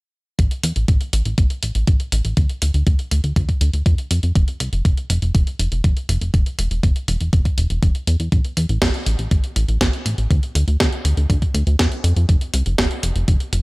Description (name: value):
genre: italo disco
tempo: 121 BPM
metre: 4/4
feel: straight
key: A minor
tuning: A4 = 440 Hz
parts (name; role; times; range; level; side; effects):
- chorused synth bass; bass; 0.4-13.6 s; E1 to F2; -19 LUFS; equal; none
- clean 12-bit digital drum machine; drums; 0.4-13.6 s; hi-hat, snare drum; -24 LUFS; equal; none
- electronic kick drum; drums; 0.4-13.4 s; none; -17 LUFS; equal; none
room: little or no reverb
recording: dry, gritty hardware recording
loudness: -16 LUFS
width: side -24 dB against mid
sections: 0.4-13.6 A section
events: filter sweep on analog synth bass 0.4-13.6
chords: none